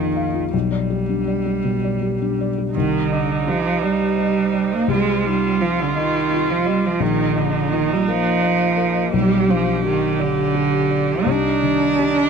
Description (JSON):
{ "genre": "neoclassical piano and strings", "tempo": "56 BPM (dotted quarters)", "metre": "6/8", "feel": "rubato", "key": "C minor", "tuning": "A4 = 436 Hz", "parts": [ { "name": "clear cello", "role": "second line", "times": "0.0-12.3 s", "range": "D3 to D4", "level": "-19 LUFS", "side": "right 5 dB", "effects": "none" }, { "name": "felt-muted upright piano", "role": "accompaniment", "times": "0.0-12.3 s", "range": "Bb1 to F5", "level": "-22 LUFS", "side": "left 6 dB", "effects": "none" }, { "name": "rich viola", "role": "accompaniment", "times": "2.7-12.3 s", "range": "Eb4 to G4", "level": "-25 LUFS", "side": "right 2 dB", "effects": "none" }, { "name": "warbly tape-like pad", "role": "sustained chords", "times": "3.8-12.3 s", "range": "Eb3 to Eb5", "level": "-30 LUFS", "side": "right 1 dB", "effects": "chorus, built-in reverb, phaser" } ], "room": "light reverb", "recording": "dark, warm production", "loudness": "-17 LUFS", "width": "side -6 dB against mid", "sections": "0.0-2.7 A section; 2.7-12.3 B section", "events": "none", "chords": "0.0 Bbsus4; 0.5 G/B; 2.7 Cmadd9; 4.9 Cmadd11; 7.0 Bbsus4; 9.1 G/B; 11.3 Cmadd9" }